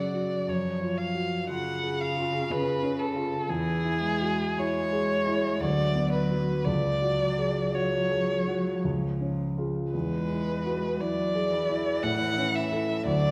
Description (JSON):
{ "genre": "classical, slow romantic movement for piano trio", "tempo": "53-61 BPM", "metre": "3/4", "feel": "rubato", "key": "unclear", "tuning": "A4 = 440 Hz", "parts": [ { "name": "warm violin", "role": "melody", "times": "0.0-13.3 s", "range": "G#4 to F#5", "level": "-31 LUFS", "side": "equal", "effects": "none" }, { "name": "warm cello", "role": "second line", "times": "0.0-13.3 s", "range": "C#3 to G#3", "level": "-36 LUFS", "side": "equal", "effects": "none" }, { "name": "warm grand piano", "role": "accompaniment", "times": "0.0-13.3 s", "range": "C#2 to B4", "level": "-31 LUFS", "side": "equal", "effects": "none" } ], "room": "wet recital hall reverb, RT60 1.9 s", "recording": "none", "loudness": "-28 LUFS", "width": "mono", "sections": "0.0-13.3 A section", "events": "none", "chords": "0.5 C#/F#; 3.5 C#m/E; 5.6 Bm/D; 6.7 C#sus4; 8.8 C#; 9.9 E7; 12.0 A", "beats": "| 0.47 1.49 2.50 | 3.49 4.58 5.61 | 6.66 7.75 8.84 | 9.93 11.00 12.04 | 13.06" }